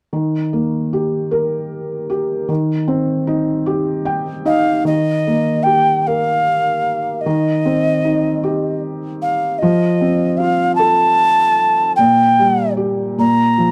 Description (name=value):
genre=children's music, lullaby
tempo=50 BPM (dotted quarters)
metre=6/8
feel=rubato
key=Eb major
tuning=A4 = 442 Hz
part: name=felt-muted upright piano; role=accompaniment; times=0.1-13.7 s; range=Bb2 to G5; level=-19 LUFS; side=equal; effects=none
part: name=breathy alto ocarina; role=melody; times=4.5-13.7 s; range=Eb5 to Bb5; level=-17 LUFS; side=equal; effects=none
room=small room ambience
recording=dry, close 1970s-style studio recording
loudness=-16 LUFS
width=mono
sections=0.1-4.9 A section; 4.9-13.7 B section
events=felt piano fill 3.7-4.9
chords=0.1 Eb; 2.5 Cm/Eb; 4.9 Eb; 7.3 Cm/Eb; 9.6 F; 12.0 Gm/Bb; 13.2 Bb5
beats=| 0.13 1.33 | 2.50 3.67 | 4.87 6.06 | 7.26 8.44 | 9.62 10.80 | 11.98 13.18